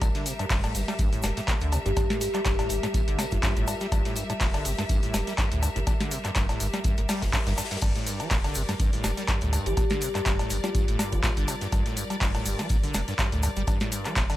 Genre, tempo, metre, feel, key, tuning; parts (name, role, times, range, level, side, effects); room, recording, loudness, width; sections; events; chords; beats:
acid house; 123 BPM; 4/4; swing 55% on 16ths; G dorian; A4 = 440 Hz
rich studio string section; sustained chords; 0.0-14.4 s; G3 to E5; -36 LUFS; equal; sidechain pumping
acid bass, saw; riff; 0.0-14.4 s; G2 to G3; -32 LUFS; equal; tube saturation, analog chorus, sidechain pumping, ping-pong delay
warm sub bass; bass; 0.0-14.3 s; F1 to D2; -30 LUFS; equal; sidechain pumping
booming analog drum machine; drums; 0.0-14.4 s; cowbell, crash cymbal, handclaps, hi-hat, snare drum; -31 LUFS; left 1 dB
electronic kick drum; drums; 0.0-14.3 s; -27 LUFS; equal
modern studio drum kit; drums; 0.0-14.4 s; hi-hat, snare drum, tambourine; -40 LUFS; left 3 dB; sidechain pumping on hats, high-pass filter on hats, high-pass filter on snare, sidechain pumping on perc, high-pass filter on perc, high-pass filter on room
egg shaker; percussion; 0.0-14.4 s; -40 LUFS; left 2 dB
kalimba; melody; 1.9-3.5, 9.7-11.5 s; F4 to G4; -34 LUFS; left 2 dB; ping-pong delay
little or no reverb; -24 LUFS; side -14 dB against mid
0.0-14.4 A section
0.0 Gm
| 0.02 0.50 0.99 1.48 | 1.97 2.46 2.94 3.43 | 3.92 4.41 4.89 5.38 | 5.87 6.36 6.85 7.33 | 7.82 8.31 8.80 9.29 | 9.77 10.26 10.75 11.24 | 11.72 12.21 12.70 13.19 | 13.68 14.16